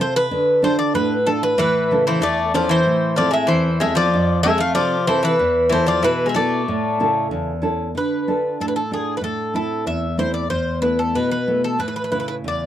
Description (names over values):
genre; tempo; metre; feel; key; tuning
greek folk, Greek bouzouki band; 94 BPM; 2/4; straight; unclear; A4 = 440 Hz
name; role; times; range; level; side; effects
Greek bouzouki; melody; 0.0-12.7 s; G#4 to F5; -20 LUFS; equal; none
nylon-string guitar; accompaniment; 0.0-12.7 s; E2 to A4; -22 LUFS; right 1 dB; none
Greek bouzouki; second line; 1.6-7.3 s; E3 to A3; -20 LUFS; left 2 dB; none
room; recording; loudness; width
light reverb; dry, close 1970s-style studio recording; -17 LUFS; side -11 dB against mid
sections
0.0-7.9 A section; 7.9-12.7 B section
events
none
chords
0.3 Dm; 1.6 A; 2.9 Am; 4.1 F; 5.4 Esus4; 6.7 A; 7.9 Dm; 9.2 Am; 10.5 Esus4; 11.8 A